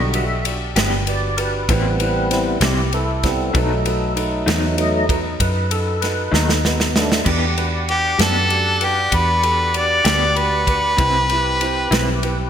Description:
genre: slow blues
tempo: 64 BPM (dotted quarters)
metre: 12/8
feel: straight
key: E minor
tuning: A4 = 438 Hz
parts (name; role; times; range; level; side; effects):
- electric guitar through a small old amp; accompaniment; 0.0-12.1 s; A2 to G4; -27 LUFS; left 2 dB; tremolo
- warm upright piano; accompaniment; 0.0-12.5 s; C4 to D5; -27 LUFS; right 4 dB; wide subtle chorus
- tonewheel organ; sustained chords; 0.0-12.5 s; D3 to F#5; -23 LUFS; equal; overdrive, chorus vibrato, slow rotary speaker
- vintage muted fingered electric bass; bass; 0.0-12.5 s; G1 to F#2; -22 LUFS; equal; none
- natural country drum kit; drums; 0.1-12.4 s; crash cymbal, kick drum, ride cymbal, snare drum; -22 LUFS; equal; none
- clear harmonica; melody; 7.9-12.2 s; G4 to D5; -17 LUFS; equal; overdrive
room: moderate lush hall reverb, RT60 1.8 s, small room ambience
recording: bright 1980s-style digital production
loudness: -16 LUFS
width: side -8 dB against mid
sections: 0.0-7.3 A section; 7.3-12.5 A section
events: tonewheel organ solo 0.0-7.3; drum fill 6.3-7.3; harmonica solo 7.3-12.5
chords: 0.0 Em7; 1.7 Am7; 3.5 B7; 7.3 Em7; 11.0 Am7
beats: 0.76 1.69 2.62 | 3.55 4.48 5.41 6.34 | 7.27 8.20 9.13 10.06 | 10.99 11.92

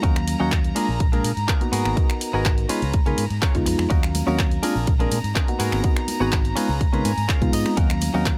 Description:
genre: filtered disco house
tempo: 124 BPM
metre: 4/4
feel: straight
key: Eb minor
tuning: A4 = 440 Hz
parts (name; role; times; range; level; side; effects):
- reed electric piano; accompaniment; 0.0-8.4 s; Gb3 to F5; -28 LUFS; equal; phaser, sidechain pumping
- dark chamber violin section; sustained chords; 0.0-8.4 s; Bb5; -35 LUFS; equal; vintage 12-bit sampler grit, sidechain pumping
- direct-recorded clean electric guitar; riff; 0.0-8.3 s; Cb4 to Ab5; -31 LUFS; equal; sidechain pumping
- fingered electric bass; bass; 0.0-8.4 s; Ab1 to Db3; -28 LUFS; equal; sidechain pumping
- electronic kick drum; drums; 0.0-8.4 s; none; -23 LUFS; equal; none
- punchy analog drum machine; drums; 0.0-8.4 s; finger snaps, handclaps, hi-hat, ride cymbal; -32 LUFS; equal; sidechain pumping on hats, sidechain pumping on cymbals
- tambourine and congas; percussion; 3.9-8.4 s; none; -36 LUFS; equal; none
room: digital ambience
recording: none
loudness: -21 LUFS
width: mono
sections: 0.0-8.4 A section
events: clean electric guitar fill 6.8-7.8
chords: 0.0 Ebm7; 0.8 Bb7; 1.7 Abm9; 2.7 Db7; 3.9 Ebm7; 4.6 Bb7; 5.6 Abm9; 6.6 Db7; 7.8 Ebm7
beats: | 0.04 0.52 1.00 1.49 | 1.97 2.46 2.94 3.42 | 3.91 4.39 4.88 5.36 | 5.84 6.33 6.81 7.29 | 7.78 8.26

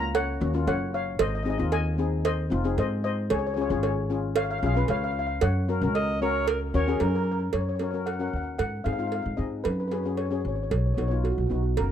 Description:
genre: calypso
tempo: 114 BPM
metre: 4/4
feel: straight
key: F# major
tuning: A4 = 439 Hz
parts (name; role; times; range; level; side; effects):
- steel pan; melody; 0.0-11.9 s; F#4 to A#5; -31 LUFS; left 3 dB; none
- steel pan; accompaniment; 0.0-11.8 s; A#3 to C#5; -31 LUFS; left 5 dB; none
- upright bass; bass; 0.0-11.9 s; E#1 to G#2; -28 LUFS; equal; none
- cowbell; percussion; 0.1-11.9 s; none; -30 LUFS; right 10 dB; none
- mellow alto saxophone; second line; 6.0-7.5 s; A#4 to D#5; -30 LUFS; right 4 dB; none
room: studio reverb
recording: dry, close 1970s-style studio recording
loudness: -24 LUFS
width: side -9 dB against mid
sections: 0.0-7.5 A section; 7.5-11.9 B section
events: none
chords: 0.0 F#; 1.2 G#; 3.3 C#7; 5.4 F#; 8.6 G#; 9.7 C#sus4/F#; 10.7 B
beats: 0.15 0.67 | 1.20 1.73 2.25 2.78 | 3.31 3.84 4.36 4.89 | 5.42 5.95 6.47 7.00 | 7.53 8.06 8.59 9.12 | 9.65 10.18 10.71 11.24 | 11.78

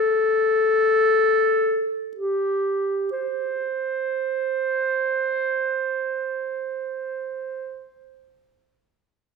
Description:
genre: classical, free, expressive piece for unaccompanied clarinet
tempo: 24-41 BPM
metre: 4/4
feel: rubato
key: unclear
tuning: A4 = 440 Hz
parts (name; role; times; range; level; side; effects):
- bright clarinet; solo; 0.0-8.0 s; G4 to C5; -21 LUFS; equal; none
room: wet recital hall reverb, RT60 1.2 s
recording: heard from further back in the room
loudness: -21 LUFS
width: side -4 dB against mid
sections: 0.0-3.1 A section; 3.1-9.4 B section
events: slowing down 0.0-3.1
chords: none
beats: 1.18 | 3.13 4.65 6.24 7.85

